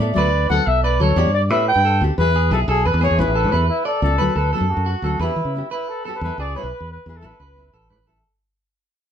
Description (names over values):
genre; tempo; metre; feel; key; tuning
highlife; 119 BPM (dotted quarters); 12/8; straight; D major; A4 = 440 Hz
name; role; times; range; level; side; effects
nylon-string guitar; accompaniment; 0.0-8.2 s; F#3 to A4; -26 LUFS; left 4 dB; none
electric guitar at the edge of break-up; arpeggios; 0.0-8.2 s; F#4 to D5; -24 LUFS; right 4 dB; warbly pitch drift, slapback echo
fingered electric bass; bass; 0.0-8.2 s; A1 to E3; -20 LUFS; equal; none
mellow trumpet; melody; 0.2-8.1 s; E4 to G5; -21 LUFS; left 2 dB; none
room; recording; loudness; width
moderate studio reverb, RT60 0.8 s; none; -16 LUFS; side -9 dB against mid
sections
0.0-4.2 A section; 4.2-8.2 B section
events
fade-out 4.2-8.2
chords
0.2 D6; 1.2 Em7 (rootless); 2.2 E; 3.2 Asus2; 4.2 D6; 5.2 Em7; 6.2 E; 7.2 Asus2